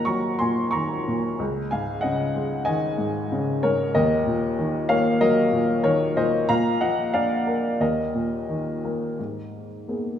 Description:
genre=classical, lyrical solo piano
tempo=92 BPM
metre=4/4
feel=uneven beats, rubato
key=Eb minor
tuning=A4 = 441 Hz
part: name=clear upright piano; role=solo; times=0.0-10.2 s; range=Db2 to Db6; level=-21 LUFS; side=left 1 dB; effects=none
room=moderate concert hall reverb, RT60 2.4 s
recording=small room reverb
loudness=-21 LUFS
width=side -9 dB against mid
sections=0.0-9.2 A section; 9.2-10.2 B section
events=none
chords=0.0 Ebm; 1.4 Dbsus2; 3.9 Ebm7; 6.5 Bb; 7.8 Eb5; 9.2 G#madd9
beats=0.08 0.74 | 1.39 2.03 2.66 3.30 | 3.94 4.58 5.21 5.85 | 6.49 7.14 7.80 8.49 | 9.19 9.89

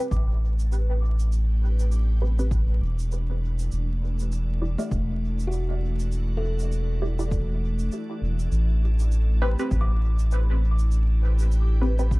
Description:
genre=ambient dub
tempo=100 BPM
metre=4/4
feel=swing 58% on 16ths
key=unclear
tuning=A4 = 440 Hz
part: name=soft additive organ-like pad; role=sustained chords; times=0.0-12.2 s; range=E3 to G4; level=-38 LUFS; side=equal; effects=ensemble chorus, built-in reverb
part: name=kalimba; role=arpeggios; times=0.0-12.0 s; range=A3 to D6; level=-36 LUFS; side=left 2 dB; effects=dub echo
part: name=filtered dub chord stab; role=stabs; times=0.0-12.1 s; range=C4 to D5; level=-33 LUFS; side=equal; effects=phaser, lush chorus, dub echo
part: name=round analog bass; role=bass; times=0.1-12.2 s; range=E1 to A1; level=-22 LUFS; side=equal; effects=none
part: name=electronic kick drum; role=drums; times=0.1-12.2 s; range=none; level=-29 LUFS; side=equal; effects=overdrive
part: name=shaker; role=drums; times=0.1-12.2 s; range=none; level=-48 LUFS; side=right 4 dB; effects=dub echo
room=little or no reverb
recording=dark, warm production, vinyl crackle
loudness=-22 LUFS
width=side -22 dB against mid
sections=0.0-12.2 A section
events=fade-in on ambient pad 0.0-12.2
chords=0.0 Am9; 3.7 Em7; 8.5 Am9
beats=0.12 0.72 | 1.32 1.92 2.52 3.12 | 3.72 4.32 4.92 5.52 | 6.12 6.72 7.32 7.92 | 8.52 9.12 9.72 10.32 | 10.92 11.52 12.12

